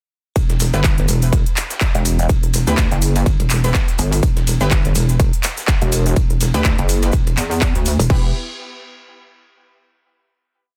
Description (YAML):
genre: bass house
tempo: 124 BPM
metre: 4/4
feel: swing 56% on 16ths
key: E minor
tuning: A4 = 445 Hz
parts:
  - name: metallic wobble bass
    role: bass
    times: 0.4-8.3 s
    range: E1 to D2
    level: -20 LUFS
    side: equal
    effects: chorus, tube saturation, sidechain pumping
  - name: dusty soul sampler-style drum kit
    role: drums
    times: 0.4-8.1 s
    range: ride cymbal, snare drum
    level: -34 LUFS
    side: equal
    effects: high-pass filter on cymbals, high-pass filter on snare, high-pass filter on room
  - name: electronic kick drum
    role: drums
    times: 0.4-8.2 s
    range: none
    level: -20 LUFS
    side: equal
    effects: none
  - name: house drum kit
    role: drums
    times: 0.4-8.2 s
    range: crash cymbal, handclaps, hi-hat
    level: -26 LUFS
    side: equal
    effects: none
  - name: egg shaker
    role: percussion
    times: 0.4-8.1 s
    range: none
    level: -31 LUFS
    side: equal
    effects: none
  - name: orchestra-hit-like synth stab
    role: stabs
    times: 0.7-8.3 s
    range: B3 to B4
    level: -30 LUFS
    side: equal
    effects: built-in reverb, sidechain pumping, delay
  - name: pulsing pluck wobble bass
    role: bass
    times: 1.9-8.0 s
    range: E1 to E2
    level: -19 LUFS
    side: equal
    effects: chorus, sidechain pumping
room: little or no reverb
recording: dense, heavily limited modern master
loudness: -17 LUFS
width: mono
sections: 0.4-8.1 drop; 8.1-10.0 final chord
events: drop 0.4-8.1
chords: 0.4 Em